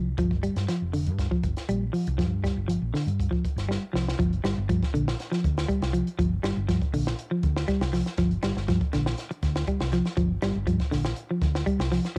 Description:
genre	afrobeat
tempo	120 BPM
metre	4/4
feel	straight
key	G minor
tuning	A4 = 440 Hz
part	clean electric guitar	arpeggios	0.0-12.2 s	D3 to G3	-29 LUFS	equal	cassette tape
part	hollow-body short-scale fingered electric bass	bass	0.0-12.2 s	F1 to G2	-31 LUFS	equal	none
part	compact cocktail drum kit	drums	0.2-12.2 s	hi-hat, kick drum, snare drum	-32 LUFS	equal	cassette tape
room	studio reverb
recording	home recording on cassette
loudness	-27 LUFS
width	mono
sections	0.0-4.2 A section; 4.2-12.2 B section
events	drum fill 3.7-4.2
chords	0.0 G7(no3)

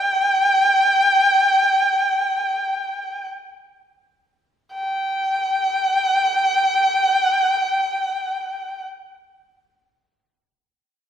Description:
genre	chinese traditional, Chinese chamber ensemble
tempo	free time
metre	none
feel	none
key	unclear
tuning	A4 = 440 Hz
part	warm erhu	solo	0.0-8.8 s	G5-25c to G5	-17 LUFS	equal	none
room	wet recital hall reverb, RT60 1.6 s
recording	heard from further back in the room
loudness	-16 LUFS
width	side -9 dB against mid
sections	0.0-4.8 A section; 4.8-10.6 B section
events	slowing down 0.0-4.8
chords	none

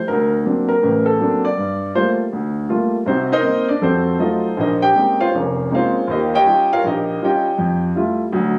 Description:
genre	solo jazz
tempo	161 BPM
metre	4/4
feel	swing 65% on 8ths, rubato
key	unclear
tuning	A4 = 440 Hz
part	warm grand piano	solo	0.0-8.6 s	F1 to G5	-18 LUFS	equal	none
room	light reverb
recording	recorded on a phone in the room, club reverb, compression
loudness	-18 LUFS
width	mono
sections	0.0-8.6 A section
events	grand piano solo 0.0-8.6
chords	0.1 D7b13; 1.6 Gm9; 3.1 Cm7b5; 3.8 F7b9; 4.6 Bbm11; 6.1 Eb9; 7.6 Fmaj9

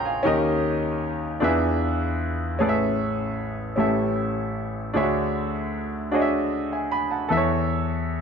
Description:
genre	gospel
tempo	51 BPM (dotted quarters)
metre	6/8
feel	straight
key	A major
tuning	A4 = 439 Hz
part	warm grand piano	solo	0.0-8.2 s	A1 to Db6	-22 LUFS	equal	none
room	moderate large studio reverb, RT60 0.9 s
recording	none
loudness	-22 LUFS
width	side -6 dB against mid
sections	0.0-2.6 A section; 2.6-8.2 B section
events	none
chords	0.2 Eb7; 1.4 E7b9; 2.6 Amaj9; 3.8 A7; 5.0 Dmaj9#11; 7.3 A/E

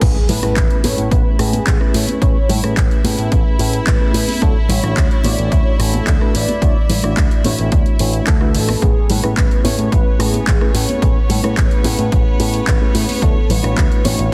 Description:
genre	nu-disco, nu disco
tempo	109 BPM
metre	4/4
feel	straight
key	A major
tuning	A4 = 437 Hz
part	unison lead	melody	0.0-14.3 s	G#4 to D5	-28 LUFS	equal	digital delay
part	mellow reed electric piano	accompaniment	0.0-14.3 s	A3 to D5	-25 LUFS	equal	fast tremolo, delay
part	clear studio string section	sustained chords	0.0-14.3 s	B3 to E5	-32 LUFS	equal	sidechain pumping
part	picked electric bass with an envelope filter	bass	0.0-14.3 s	A1 to A2	-22 LUFS	equal	none
part	electronic kick drum	drums	0.0-13.9 s	none	-18 LUFS	equal	none
part	house drum kit	drums	0.0-14.3 s	crash cymbal, handclaps, hi-hat, rim click	-26 LUFS	equal	soft clipping on snare
part	impact	sound effects	0.0-2.2 s	none	-29 LUFS	equal	none
part	congas	percussion	0.3-14.2 s	none	-28 LUFS	equal	none
room	light reverb, digital ambience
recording	dense, heavily limited modern master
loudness	-15 LUFS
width	mono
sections	0.0-14.3 A section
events	drop 0.0-14.3; impact 0.0-2.2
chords	0.0 Amaj9; 4.4 Dmaj9; 8.8 Amaj9; 13.2 Dmaj9

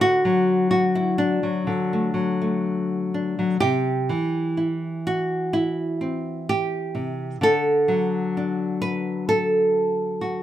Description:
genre	folk, solo fingerstyle acoustic guitar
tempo	64 BPM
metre	4/4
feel	straight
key	D mixolydian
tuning	A4 = 440 Hz
part	nylon-string guitar	solo	0.0-10.4 s	C3 to B4	-20 LUFS	equal	none
room	light reverb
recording	minimal, uncompressed stereo recording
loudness	-20 LUFS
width	side -12 dB against mid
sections	0.0-3.6 A section; 3.6-10.4 B section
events	none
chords	0.0 D; 3.6 C; 7.4 D

